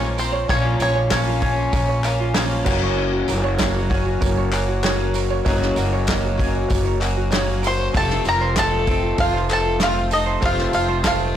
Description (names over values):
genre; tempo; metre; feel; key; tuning
indie folk with a building arrangement; 97 BPM; 4/4; straight; unclear; A4 = 441 Hz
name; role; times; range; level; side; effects
bluegrass banjo; melody; 0.0-2.6, 7.7-11.4 s; C5 to C6; -23 LUFS; right 1 dB; none
dark fiddle; second line; 0.0-2.6, 7.7-11.4 s; C4 to C5; -26 LUFS; left 4 dB; analog delay
bright grand piano; accompaniment; 0.0-11.4 s; F1 to Eb5; -29 LUFS; right 6 dB; none
picked twelve-string acoustic guitar; accompaniment; 0.0-11.4 s; F2 to Gb4; -26 LUFS; left 6 dB; none
tenor ukulele; arpeggios; 0.0-11.4 s; C4 to Db5; -28 LUFS; right 7 dB; none
upright bass; bass; 0.0-11.4 s; F1 to Bb1; -23 LUFS; equal; none
natural country drum kit; drums; 0.2-11.2 s; crash cymbal, hi-hat, kick drum, snare drum; -25 LUFS; equal; none
tambourine; percussion; 0.2-11.2 s; none; -38 LUFS; right 6 dB; none
group handclap; percussion; 1.1-11.2 s; none; -28 LUFS; left 6 dB; none
room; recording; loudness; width
light reverb, small room ambience; blown-out, overdriven recording, overdrive; -17 LUFS; side -10 dB against mid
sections
0.0-11.4 A section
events
none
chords
0.0 Bbm; 2.7 Gb; 7.9 F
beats
| 0.50 1.12 1.74 2.36 | 2.98 3.60 4.22 4.84 | 5.46 6.08 6.70 7.32 | 7.94 8.56 9.18 9.80 | 10.42 11.04